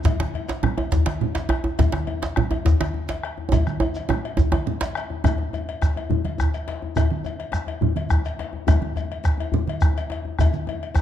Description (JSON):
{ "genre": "west african traditional, West African drum ensemble", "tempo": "140 BPM (dotted quarters)", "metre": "12/8", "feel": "straight", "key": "none", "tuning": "none", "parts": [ { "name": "shekere", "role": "percussion", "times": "0.0-11.0 s", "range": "none", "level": "-29 LUFS", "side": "right 1 dB", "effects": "none" }, { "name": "bombo", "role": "percussion", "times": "0.1-11.0 s", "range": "none", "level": "-23 LUFS", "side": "equal", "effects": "none" }, { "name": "congas", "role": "percussion", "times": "0.1-11.0 s", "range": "none", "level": "-28 LUFS", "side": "right 6 dB", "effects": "none" }, { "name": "cowbell", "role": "percussion", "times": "0.1-11.0 s", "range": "none", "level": "-34 LUFS", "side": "left 6 dB", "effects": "none" }, { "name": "djembe", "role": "percussion", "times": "0.1-11.0 s", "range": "none", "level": "-27 LUFS", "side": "left 5 dB", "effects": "none" }, { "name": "djembe", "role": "percussion", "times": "0.1-4.9 s", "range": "none", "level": "-25 LUFS", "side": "right 3 dB", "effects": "none" } ], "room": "moderate recital hall reverb, RT60 1.5 s", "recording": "dark, warm production", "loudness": "-21 LUFS", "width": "side -10 dB against mid", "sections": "0.0-5.2 A section; 5.2-11.0 A section", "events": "drum fill 3.5-5.2", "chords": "none" }